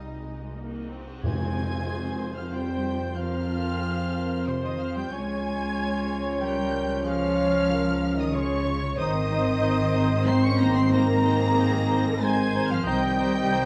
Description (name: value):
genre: cinematic, emotional film score for orchestra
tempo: 93 BPM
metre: 3/4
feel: rubato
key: F minor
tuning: A4 = 440 Hz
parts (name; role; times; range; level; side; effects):
- muted studio violin section; melody; 0.0-13.7 s; Eb5 to Db7; -38 LUFS; equal; none
- muted studio violin section; second line; 0.0-13.7 s; C5 to Db6; -39 LUFS; equal; none
- muted chamber viola section; accompaniment; 0.0-13.7 s; G3 to Eb5; -38 LUFS; equal; none
- muted studio cello section; bass; 0.0-13.7 s; C3 to Eb4; -32 LUFS; equal; none
- muted studio double bass section; bass; 0.0-13.7 s; Ab1 to F2; -31 LUFS; equal; none
- clear clarinet; second line; 1.2-13.7 s; Eb4 to F4; -39 LUFS; equal; none
- flute section; second line; 1.2-13.7 s; C5 to Db6; -37 LUFS; equal; none
- warm cor anglais; second line; 1.2-13.7 s; C5 to Db5; -37 LUFS; equal; none
- dark French horn section; sustained chords; 1.2-13.7 s; Eb3 to Db4; -31 LUFS; equal; none
- tam-tam; percussion; 1.2-3.8 s; none; -44 LUFS; equal; none
- timpani; percussion; 1.2-2.2 s; F2; -33 LUFS; equal; none
room: wet recital hall reverb, RT60 1.5 s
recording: dark, warm production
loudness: -25 LUFS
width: mono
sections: 0.0-1.2 A section; 1.2-13.7 A section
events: band accent 1.2-1.9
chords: 0.0 Cm; 1.2 Fmadd9; 5.1 Db; 9.0 Ab; 12.9 Cm